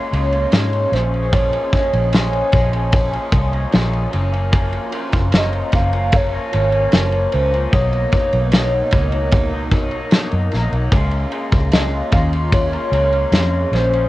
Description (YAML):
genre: indie pop, bedroom pop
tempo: 75 BPM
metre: 4/4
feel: straight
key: Db major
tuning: A4 = 438 Hz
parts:
  - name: warbly nostalgic lead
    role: melody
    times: 0.0-14.1 s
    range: C5 to F5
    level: -21 LUFS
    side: equal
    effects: analog chorus, cassette tape, plate reverb
  - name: electric guitar through a small old amp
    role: accompaniment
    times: 0.0-14.1 s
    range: Gb2 to F4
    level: -26 LUFS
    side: left 2 dB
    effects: lush chorus, warbly pitch drift, plate reverb
  - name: phased analog pad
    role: sustained chords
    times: 0.0-14.1 s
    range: Cb3 to Bb4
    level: -28 LUFS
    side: equal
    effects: phaser, chorus, plate reverb
  - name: vintage muted fingered electric bass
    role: bass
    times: 0.1-14.1 s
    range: Gb1 to Ab2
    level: -19 LUFS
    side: equal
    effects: none
  - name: loose indie drum kit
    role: drums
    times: 0.1-14.1 s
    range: kick drum, ride cymbal, snare drum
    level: -18 LUFS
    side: equal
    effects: vintage 12-bit sampler grit, cassette tape
room: moderate booth ambience, RT60 0.2 s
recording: home recording on cassette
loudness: -15 LUFS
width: side -17 dB against mid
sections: 0.0-14.1 A section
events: none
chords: 0.0 Db6; 0.9 Bbm7; 4.1 Gbmaj7; 7.7 Cbmaj7; 10.9 Db6